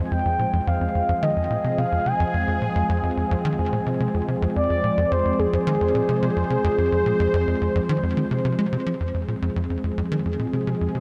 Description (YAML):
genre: ambient, sequencer-driven space music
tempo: 108 BPM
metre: 4/4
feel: straight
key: F minor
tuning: A4 = 440 Hz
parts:
  - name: mellow horn-like synth lead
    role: melody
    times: 0.0-8.4 s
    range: Ab4 to Ab5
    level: -27 LUFS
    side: equal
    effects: chorus, delay
  - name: sweeping resonant pad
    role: sustained chords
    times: 0.0-11.0 s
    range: F3 to C5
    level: -28 LUFS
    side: equal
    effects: chorus
  - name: tight sequencer bass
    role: riff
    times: 0.0-11.0 s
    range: F2 to Ab3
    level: -27 LUFS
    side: equal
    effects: lush chorus, delay
room: wet huge ambient reverb, RT60 8.6 s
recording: none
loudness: -23 LUFS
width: mono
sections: 0.0-9.0 A section; 9.0-11.0 B section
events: fade-in on analog synth pad 0.0-9.0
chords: 0.0 Fm